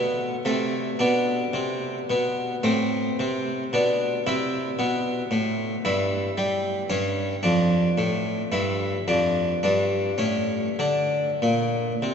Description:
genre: classical, baroque-style suite movement for harpsichord.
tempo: 96-115 BPM.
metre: 3/4.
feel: rubato.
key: A minor, D minor from 5.9 s.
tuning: A4 = 440 Hz.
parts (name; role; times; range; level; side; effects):
harpsichord; solo; 0.0-12.1 s; F2 to E4; -22 LUFS; equal; none.
room: wet cathedral reverb, RT60 5.4 s.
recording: nothing above 7.9 kHz.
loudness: -22 LUFS.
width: side -7 dB against mid.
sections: 0.0-12.1 A section.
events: none.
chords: 0.5 Am/C; 1.0 Bm; 2.7 Am; 3.7 Bm; 4.3 Am; 5.9 Em/G; 6.9 N.C.; 7.5 Dm/F; 8.5 Em/G; 9.1 Dm/F; 9.6 G5; 10.2 A; 10.8 Bbadd9.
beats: 0.45 | 1.00 1.55 2.10 | 2.65 3.21 3.74 | 4.27 4.80 5.32 | 5.86 6.39 6.92 | 7.45 7.99 8.52 | 9.08 9.62 10.19 | 10.80 11.42 12.04.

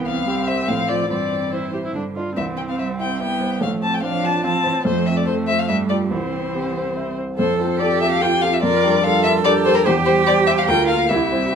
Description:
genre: quick classical-period movement for piano quartet.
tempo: 145 BPM.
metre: 3/4.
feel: straight.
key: C major, F major from 7.4 s.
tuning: A4 = 440 Hz.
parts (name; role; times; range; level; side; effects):
warm cello; second line; 0.0-11.5 s; D3 to Bb4; -23 LUFS; right 8 dB; none.
warm grand piano; accompaniment; 0.0-11.6 s; A1 to F5; -22 LUFS; equal; none.
warm viola; accompaniment; 0.0-11.6 s; A3 to Bb4; -26 LUFS; right 3 dB; none.
dark violin; melody; 0.1-11.6 s; Bb4 to A5; -21 LUFS; left 6 dB; none.
room: light reverb.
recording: close, detailed microphones.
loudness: -17 LUFS.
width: side -7 dB against mid.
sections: 0.0-7.4 A section; 7.4-11.6 B section.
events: none.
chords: 0.0 C; 0.7 F/A; 1.1 C/G; 2.0 G5; 2.4 C; 3.6 F/A; 4.9 F; 5.7 G5; 6.1 C; 7.4 F; 8.6 Gm7/F; 9.9 C/E; 10.7 Bb/D.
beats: 0.28 0.69 | 1.10 1.53 1.95 | 2.37 2.79 3.20 | 3.62 4.03 4.45 | 4.86 5.27 5.69 | 6.11 6.54 6.96 | 7.38 7.80 8.22 | 8.63 9.04 9.45 | 9.86 10.27 10.69 | 11.11 11.53.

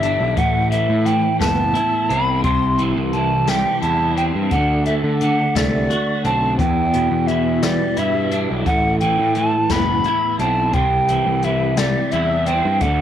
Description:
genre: psychedelic rock.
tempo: 58 BPM (dotted quarters).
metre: 6/8.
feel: straight.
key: unclear.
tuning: A4 = 439 Hz.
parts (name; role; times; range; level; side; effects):
breathy mellow concert flute; melody; 0.0-13.0 s; D5 to C6; -20 LUFS; equal; tape echo.
twelve-string electric guitar; riff; 0.0-13.0 s; E2 to F#4; -20 LUFS; equal; rotary speaker, double-tracked left and right.
fuzz picked electric bass; bass; 0.0-13.0 s; F#1 to D3; -22 LUFS; equal; overdrive.
jazz brush drum kit; drums; 0.0-13.0 s; hi-hat, kick drum, snare drum; -25 LUFS; left 2 dB; none.
room: light reverb, studio reverb.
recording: 1960s-style stereo.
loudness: -16 LUFS.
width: side -10 dB against mid.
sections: 0.0-13.0 A section.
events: none.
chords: 0.4 Amadd9; 2.4 C; 4.5 D7; 6.6 Em7; 8.7 Amadd9; 10.7 C.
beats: | 0.37 1.41 | 2.44 3.48 | 4.52 5.55 | 6.59 7.63 | 8.67 9.71 | 10.74 11.78 | 12.82.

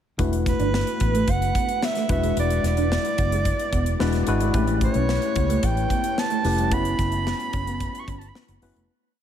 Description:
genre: polished 1980s jazz-funk pop.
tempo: 110 BPM.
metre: 4/4.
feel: straight.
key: unclear.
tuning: A4 = 439 Hz.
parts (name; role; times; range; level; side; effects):
tine electric piano; accompaniment; 0.2-8.9 s; F#3 to B4; -27 LUFS; left 4 dB; lush chorus.
mellow electric guitar; riff; 0.2-8.9 s; G3 to F#4; -31 LUFS; right 4 dB; analog chorus.
vintage muted fingered electric bass; bass; 0.2-8.9 s; E1 to C#2; -25 LUFS; equal; none.
crisp fusion drum kit; drums; 0.2-8.9 s; hi-hat, kick drum, snare drum; -28 LUFS; equal; none.
breathy soprano saxophone; melody; 0.5-8.4 s; B4 to C#6; -27 LUFS; right 3 dB; diffuse ambient delay.
room: moderate huge ambient reverb, RT60 8.5 s.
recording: dreamy mix soaked in reverb.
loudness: -20 LUFS.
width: side -9 dB against mid.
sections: 0.2-8.9 verse.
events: fade-out 6.7-8.9.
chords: 0.2 E7sus4; 2.1 E9; 4.5 A7; 6.7 F#7sus4.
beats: | 0.19 0.74 1.28 1.82 | 2.37 2.91 3.46 4.00 | 4.54 5.09 5.63 6.17 | 6.72 7.26 7.81 8.35.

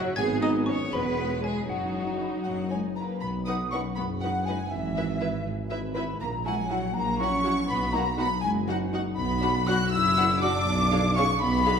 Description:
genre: cinematic.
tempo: 80 BPM (dotted quarters).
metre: 6/8.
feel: straight.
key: B major.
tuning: A4 = 442 Hz.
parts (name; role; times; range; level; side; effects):
xylophone with wooden mallets; melody; 0.0-2.4 s; F#5 to G#6; -36 LUFS; left 2 dB; none.
warm symphonic violin section; second line; 0.0-11.8 s; B4 to F#6; -32 LUFS; left 1 dB; none.
rich studio viola section; accompaniment; 0.0-11.7 s; F#3 to B4; -34 LUFS; right 2 dB; none.
concert harp; arpeggios; 0.0-11.8 s; E2 to C#5; -34 LUFS; left 7 dB; none.
rich chamber violin section; melody; 0.2-11.7 s; F#4 to G#5; -36 LUFS; left 4 dB; none.
dark tuba; bass; 0.2-11.8 s; E1 to B1; -32 LUFS; right 2 dB; none.
rich chamber cello section; bass; 0.2-11.8 s; E3 to G#4; -32 LUFS; right 2 dB; none.
rich chamber double bass section; bass; 0.2-11.8 s; E1 to B1; -34 LUFS; right 2 dB; none.
concert flute; second line; 2.5-11.8 s; E5 to F#6; -29 LUFS; left 2 dB; none.
room: wet recital hall reverb, RT60 1.6 s.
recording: recorded in a church or concert hall.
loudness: -24 LUFS.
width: side -7 dB against mid.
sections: 0.0-3.2 A section; 3.2-11.8 B section.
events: none.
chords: 0.2 G#m; 0.9 C#m7/E; 1.7 B/F#; 2.5 F#; 3.2 B; 4.7 E/G#; 6.2 F#7/A#; 7.7 B; 9.2 Bm; 10.7 Bdim7.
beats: | 0.17 0.93 | 1.69 2.46 | 3.22 3.97 | 4.72 5.46 | 6.21 6.95 | 7.69 8.43 | 9.17 9.91 | 10.66 11.41.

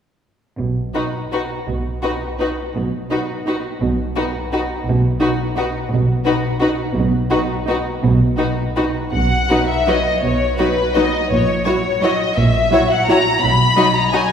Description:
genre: classical, orchestral ballroom waltz.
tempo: 155-186 BPM.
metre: 3/4.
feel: rubato.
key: B major.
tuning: A4 = 440 Hz.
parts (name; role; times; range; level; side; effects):
rich studio cello section; bass; 0.6-13.7 s; A#2 to B2; -24 LUFS; right 2 dB; none.
rich studio double bass section; bass; 0.6-13.7 s; A#1 to B1; -22 LUFS; right 2 dB; none.
warm studio violin section; melody; 0.9-14.3 s; B4 to B5; -20 LUFS; left 3 dB; none.
rich studio violin section; second line; 0.9-14.2 s; F#4 to D#5; -24 LUFS; left 2 dB; none.
rich studio viola section; accompaniment; 0.9-14.2 s; F#3 to E4; -22 LUFS; right 1 dB; none.
room: wet concert hall reverb, RT60 2.2 s.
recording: heard from further back in the room.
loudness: -15 LUFS.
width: side -8 dB against mid.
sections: 0.6-9.1 A section; 9.1-14.3 B section.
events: none.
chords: 0.6 B; 11.3 F#7/A#; 13.4 B.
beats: | 0.58 0.95 1.33 | 1.68 2.04 2.40 | 2.75 3.11 3.47 | 3.81 4.16 4.53 | 4.86 5.21 5.57 | 5.91 6.25 6.61 | 6.96 7.31 7.67 | 8.02 8.38 8.76 | 9.13 9.50 9.88 | 10.23 10.59 10.95 | 11.30 11.65 12.02 | 12.37 12.72 13.09 | 13.43 13.77 14.13.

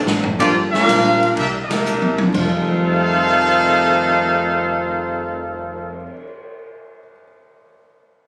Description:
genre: jazz, big band swing.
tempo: 123 BPM.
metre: 4/4.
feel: swing 69% on 8ths.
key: F mixolydian.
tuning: A4 = 435 Hz.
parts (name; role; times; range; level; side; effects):
picked steel-string acoustic guitar; accompaniment; 0.0-6.1 s; F2 to D4; -31 LUFS; equal; none.
upright bass; bass; 0.0-6.0 s; F1 to D2; -31 LUFS; equal; none.
swinging big-band drum kit; drums; 0.1-6.2 s; crash cymbal, cymbal swell, hi-hat, kick drum, ride cymbal, snare drum, toms; -27 LUFS; equal; none.
clear trumpet section; melody; 0.4-6.1 s; Bb3 to F5; -20 LUFS; equal; none.
warm trombone section; second line; 0.4-6.0 s; F2 to F4; -25 LUFS; equal; none.
warm grand piano; accompaniment; 0.4-7.2 s; F2 to Eb7; -28 LUFS; equal; none.
room: moderate club reverb, RT60 0.7 s.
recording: recorded on a phone in the room, studio reverb.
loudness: -17 LUFS.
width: mono.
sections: 0.4-2.3 A section; 2.3-6.2 B section.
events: drum fill 0.0-0.4, 1.9-2.3; band accent 1.6.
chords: 0.4 Gm7; 1.4 C9; 2.3 F9.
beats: | 0.39 0.88 1.37 1.86 | 2.34 2.83 3.32 3.81 | 4.29 4.78 5.27 5.75.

